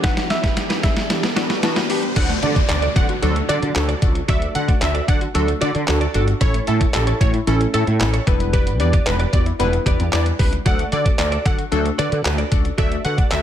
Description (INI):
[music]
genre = dance-pop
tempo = 113 BPM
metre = 4/4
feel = straight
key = D major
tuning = A4 = 440 Hz
[part]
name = soft round pluck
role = melody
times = 0.0-2.1 s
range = E5 to F#5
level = -28 LUFS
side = equal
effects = chorus, ping-pong delay
[part]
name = glassy digital keys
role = accompaniment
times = 0.0-13.4 s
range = E3 to B4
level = -26 LUFS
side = left 1 dB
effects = chorus, sidechain pumping
[part]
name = ethereal airy pad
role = sustained chords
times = 0.0-2.1 s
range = E3 to D5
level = -31 LUFS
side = left 1 dB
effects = ensemble chorus, built-in reverb, sidechain pumping
[part]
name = wide unison pluck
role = arpeggios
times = 0.0-13.3 s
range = E3 to F#5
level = -30 LUFS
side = left 4 dB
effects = sidechain pumping, ping-pong delay
[part]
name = direct-recorded clean electric guitar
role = riff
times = 0.0-13.4 s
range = D4 to D5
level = -30 LUFS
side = right 5 dB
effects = analog chorus
[part]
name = detuned 8-bit digital drum machine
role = drums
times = 0.0-13.4 s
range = crash cymbal, handclaps, hi-hat, kick drum, snare drum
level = -20 LUFS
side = equal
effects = none
[part]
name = riser and downlifter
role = sound effects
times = 0.0-6.4 s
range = none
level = -30 LUFS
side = equal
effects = none
[part]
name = plucky unison lead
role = melody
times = 2.2-13.4 s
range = A4 to F#5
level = -26 LUFS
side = equal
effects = ping-pong delay
[part]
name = woody fretless electric bass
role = bass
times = 2.2-13.4 s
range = E1 to D3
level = -20 LUFS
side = equal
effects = ensemble chorus, sidechain pumping
[sound]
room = digital ambience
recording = none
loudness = -16 LUFS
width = side -10 dB against mid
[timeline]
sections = 0.0-2.2 A section; 2.2-13.4 B section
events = build-up 0.0-2.2; drum fill 0.0-2.2; riser 0.0-2.2; drop 2.2-13.4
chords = 0.0 Em7; 2.2 D; 6.4 A; 8.3 Em7; 10.7 D